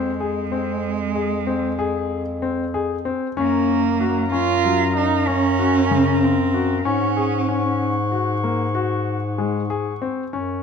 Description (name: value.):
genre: contemporary instrumental, chamber music in an uneven meter.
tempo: 190 BPM (eighths).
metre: 11/8.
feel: straight.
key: unclear.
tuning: A4 = 438 Hz.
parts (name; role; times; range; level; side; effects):
rich cello; melody; 0.0-7.8 s; Ab3 to F4; -22 LUFS; right 8 dB; none.
warm grand piano; arpeggios; 0.0-10.6 s; Db3 to Ab4; -24 LUFS; left 6 dB; none.
mellow bass clarinet; bass; 0.0-10.6 s; F2 to Ab2; -23 LUFS; left 3 dB; none.
warm woodwind section; sustained chords; 3.4-10.3 s; Gb3 to Db6; -28 LUFS; left 1 dB; none.
room: light reverb.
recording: close, detailed microphones.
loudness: -18 LUFS.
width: side -6 dB against mid.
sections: 0.0-10.3 A section.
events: none.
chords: 0.0 Fm; 3.4 Gbmaj7; 6.9 Ab7sus4.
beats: 0.21 0.53 0.84 1.16 1.48 1.79 2.11 2.43 2.74 3.06 | 3.38 3.69 4.01 4.32 4.64 4.96 5.27 5.59 5.91 6.22 6.54 | 6.86 7.17 7.49 7.80 8.12 8.44 8.75 9.07 9.39 9.70 10.02 | 10.34.